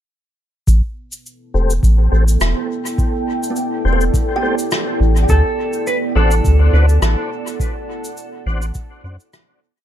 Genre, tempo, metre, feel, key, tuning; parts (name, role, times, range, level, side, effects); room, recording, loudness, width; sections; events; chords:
ambient dub; 104 BPM; 4/4; swing 54% on 16ths; A dorian; A4 = 440 Hz
deep dark ambient pad; sustained chords; 1.7-9.8 s; B3 to G5; -23 LUFS; right 1 dB; chorus, built-in reverb
soft dub sub bass; bass; 0.7-9.2 s; E1 to F#2; -13 LUFS; equal
cabasa and rim click; drums; 0.7-9.8 s; -25 LUFS; left 1 dB; dub echo
electronic kick drum; drums; 0.7-8.9 s; -18 LUFS; equal; overdrive
tonewheel organ; stabs; 1.5-9.2 s; A3 to G4; -26 LUFS; left 4 dB; chorus vibrato, slow rotary speaker, low-pass filter, dub echo
kalimba; arpeggios; 3.5-6.0 s; B3 to G5; -26 LUFS; right 1 dB; tape echo
clean lap steel guitar; melody; 5.3-9.3 s; A4 to B4; -23 LUFS; right 2 dB; vintage 12-bit sampler grit, tape echo
studio ambience; dark, warm production; -14 LUFS; side -11 dB against mid
0.7-9.8 groove
filter sweep on tonewheel organ 0.7-9.8; fade-out 6.8-9.8
0.7 Am7; 5.3 D7